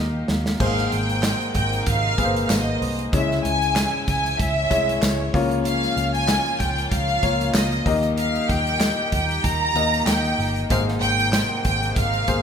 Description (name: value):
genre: piano-driven pop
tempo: 95 BPM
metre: 4/4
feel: swing 56% on 16ths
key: Ab major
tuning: A4 = 440 Hz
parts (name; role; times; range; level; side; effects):
- clear upright piano; accompaniment; 0.0-12.4 s; Ab2 to F5; -26 LUFS; left 4 dB; none
- warm studio string section; sustained chords; 0.0-12.4 s; Ab2 to G4; -33 LUFS; equal; none
- vintage muted picked electric bass; bass; 0.0-12.4 s; G1 to Eb2; -26 LUFS; right 1 dB; none
- modern studio drum kit; drums; 0.3-12.4 s; crash cymbal, handclaps, hi-hat, kick drum, snare drum; -25 LUFS; right 1 dB; none
- warm studio violin section; melody; 0.6-12.4 s; Db5 to Bb5; -23 LUFS; right 1 dB; none
- tambourine; percussion; 1.2-11.5 s; none; -35 LUFS; left 4 dB; none
room: wet recital hall reverb, RT60 1.8 s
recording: recorded in a church or concert hall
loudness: -19 LUFS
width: side -7 dB against mid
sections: 0.6-12.4 A section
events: drum fill 0.0-0.6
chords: 0.0 Eb; 0.6 Abadd9; 3.1 Dbm; 5.3 Bbm/Db; 7.9 Eb; 10.7 Abadd9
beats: | 0.60 1.23 1.86 2.50 | 3.13 3.76 4.39 5.02 | 5.65 6.28 6.92 7.55 | 8.18 8.81 9.44 10.07 | 10.70 11.33 11.96